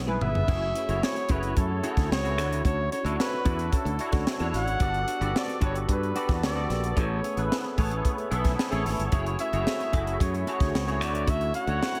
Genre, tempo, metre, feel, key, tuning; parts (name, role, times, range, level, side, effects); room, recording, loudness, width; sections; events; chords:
polished 1980s jazz-funk pop; 111 BPM; 4/4; straight; F# minor; A4 = 440 Hz
barky tine electric piano; accompaniment; 0.0-12.0 s; A3 to E5; -34 LUFS; equal; ensemble chorus
modern bright fingered electric bass; bass; 0.0-11.8 s; F#1 to G2; -32 LUFS; equal
clean electric guitar; riff; 0.1-12.0 s; A3 to C#5; -39 LUFS; equal; subtle chorus
tight funk drum kit; drums; 0.1-12.0 s; crash cymbal, hi-hat, kick drum, snare drum, toms; -30 LUFS; equal; gated reverb
warm flugelhorn; melody; 0.2-12.0 s; A4 to F#5; -34 LUFS; equal
small room ambience; -27 LUFS; mono
0.5-12.0 A section
drum fill 0.0-0.5
0.5 F#m7; 2.4 Dmaj7; 4.8 Gmaj7; 7.0 Amaj7; 9.1 F#m7; 11.0 Dmaj7